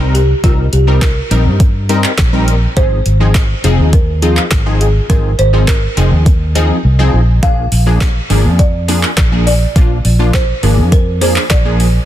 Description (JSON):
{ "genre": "dance-pop", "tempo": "103 BPM", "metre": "4/4", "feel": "straight", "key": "unclear", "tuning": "A4 = 440 Hz", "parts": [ { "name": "folk marimba with soft mallets", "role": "melody", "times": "0.0-11.9 s", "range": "F4 to F5", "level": "-20 LUFS", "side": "right 1 dB", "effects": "tape echo" }, { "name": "funky polysynth comp", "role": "accompaniment", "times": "0.0-11.9 s", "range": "F3 to Bb4", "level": "-18 LUFS", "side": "left 2 dB", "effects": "chorus, sidechain pumping" }, { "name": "vintage muted fingered electric bass", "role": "bass", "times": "0.0-12.0 s", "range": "F1 to G2", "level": "-12 LUFS", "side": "equal", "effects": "sidechain pumping" }, { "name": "smooth R&B drum kit", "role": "drums", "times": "0.1-11.9 s", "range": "handclaps, hi-hat, kick drum, snare drum", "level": "-14 LUFS", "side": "equal", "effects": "none" } ], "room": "little or no reverb", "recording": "dense, heavily limited modern master", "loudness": "-9 LUFS", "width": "side -12 dB against mid", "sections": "0.0-12.1 A section", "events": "silent gap 6.8-7.4", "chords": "0.0 Cm7; 2.8 Ab6; 7.4 Bb7" }